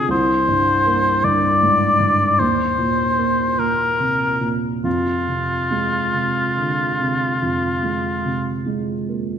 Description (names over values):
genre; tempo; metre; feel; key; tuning
classical, impressionist duo for oboe and grand piano; 46-53 BPM; 4/4; rubato; F dorian; A4 = 442 Hz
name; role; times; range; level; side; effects
warm oboe; melody; 0.0-8.6 s; F4 to D5; -18 LUFS; left 2 dB; none
dark grand piano; accompaniment; 0.0-9.4 s; C2 to C4; -21 LUFS; right 2 dB; none
room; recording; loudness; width
wet scoring stage reverb, RT60 1.7 s; none; -16 LUFS; side -8 dB against mid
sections
0.0-9.4 A section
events
none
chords
0.1 C5; 2.4 Eb5; 4.9 Fm